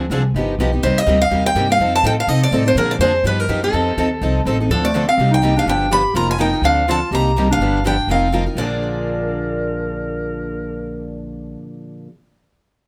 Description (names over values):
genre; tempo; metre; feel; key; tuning
acoustic string swing (jazz manouche); 248 BPM; 4/4; swing 57% on 8ths; Bb mixolydian; A4 = 441 Hz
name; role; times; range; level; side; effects
picked steel-string acoustic guitar; accompaniment; 0.0-12.1 s; Bb2 to Bb4; -25 LUFS; equal; none
picked steel-string acoustic guitar; accompaniment; 0.0-12.1 s; Bb2 to Bb4; -30 LUFS; equal; none
upright bass; bass; 0.0-11.5 s; F1 to C3; -24 LUFS; equal; none
picked steel-string acoustic guitar; melody; 0.8-11.6 s; A4 to B5; -21 LUFS; equal; tape echo
growling clarinet; second line; 4.7-11.3 s; F3 to Bb4; -26 LUFS; equal; none
room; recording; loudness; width
light reverb; none; -18 LUFS; mono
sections
0.0-4.7 A section; 4.7-8.6 B section; 8.6-10.5 C section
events
none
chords
0.3 Gaug7; 0.8 Cm7; 1.8 F7; 2.8 Bb7; 3.2 G7alt; 3.7 F7; 4.7 Dm7; 5.2 Cm7; 5.7 G7; 6.1 F7sus4; 6.6 Dm7; 7.1 Cm7; 7.6 G7; 8.1 F7sus4; 8.6 Bb7